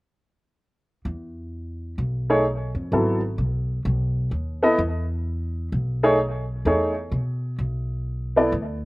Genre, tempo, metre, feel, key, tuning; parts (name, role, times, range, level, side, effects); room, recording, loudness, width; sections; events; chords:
jazz; 129 BPM; 4/4; swing 65% on 8ths; E major; A4 = 445 Hz
upright bass; bass; 1.1-8.8 s; G#1 to B2; -26 LUFS; equal
clear upright piano; accompaniment; 2.3-8.5 s; F#3 to D#5; -20 LUFS; equal; slapback echo
little or no reverb; recorded outdoors, with no room sound; -21 LUFS; side -22 dB against mid
1.1-8.8 A section
1.1 Emaj7